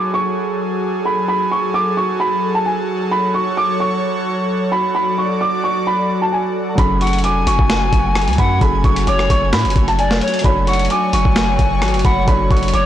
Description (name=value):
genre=hip hop, trap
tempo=131 BPM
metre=4/4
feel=half-time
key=F# minor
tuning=A4 = 442 Hz
part: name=felt-muted upright piano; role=melody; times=0.0-12.9 s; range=G#5 to D6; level=-19 LUFS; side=right 2 dB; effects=low-pass filter, tape echo
part: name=airy breathy pad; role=sustained chords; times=0.0-12.9 s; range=F#3 to G#5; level=-20 LUFS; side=equal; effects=chorus
part: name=dark grand piano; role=accompaniment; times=6.8-12.9 s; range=F#3 to C#5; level=-26 LUFS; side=right 2 dB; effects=low-pass filter
part: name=long sustained 808-style bass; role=bass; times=6.8-12.9 s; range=E#1 to A2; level=-19 LUFS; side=equal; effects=none
part: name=boom bap sampler-style drum kit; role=drums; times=6.8-12.8 s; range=finger snaps, hi-hat, kick drum, rim click, snare drum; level=-18 LUFS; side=equal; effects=soft clipping on snare
part: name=bright polished pan flute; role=second line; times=7.0-12.9 s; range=C#5 to G#5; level=-21 LUFS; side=left 5 dB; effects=tape echo
room=light reverb, small room ambience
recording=blown-out, overdriven recording, overdrive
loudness=-14 LUFS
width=side -11 dB against mid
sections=0.0-12.9 A section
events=none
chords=0.0 F#madd9; 3.1 Dmaj7/F#; 6.8 F#madd9; 10.4 Dmaj7/F#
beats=0.37 0.83 | 1.28 1.74 2.20 2.66 | 3.12 3.57 4.03 4.49 | 4.95 5.41 5.86 6.32 | 6.78 7.24 7.70 8.15 | 8.61 9.07 9.53 9.99 | 10.44 10.90 11.36 11.82 | 12.28 12.73